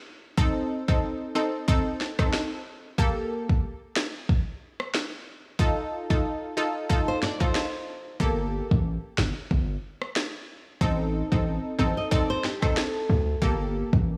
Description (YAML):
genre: dancehall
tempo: 92 BPM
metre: 4/4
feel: swing 56% on 16ths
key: G minor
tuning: A4 = 439 Hz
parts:
  - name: analog pluck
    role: accompaniment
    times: 0.4-14.0 s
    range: Bb3 to A4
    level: -31 LUFS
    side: equal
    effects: chorus
  - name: afro-pop drum kit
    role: drums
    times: 0.4-14.1 s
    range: kick drum, rim click, snare drum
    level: -28 LUFS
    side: equal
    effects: vintage 12-bit sampler grit
  - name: nylon-string guitar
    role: arpeggios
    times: 7.1-13.4 s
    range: G4 to Eb5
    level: -33 LUFS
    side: equal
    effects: none
  - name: hard-hitting 808-style bass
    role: bass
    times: 8.2-14.2 s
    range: G1 to D2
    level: -29 LUFS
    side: equal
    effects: none
room: light reverb, digital ambience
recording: studio ambience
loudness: -27 LUFS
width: mono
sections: 0.0-14.2 A section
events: none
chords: 0.4 Adim; 3.0 Gmadd9; 5.6 F7; 8.2 Gmadd9; 10.8 Adim; 13.4 Gmadd9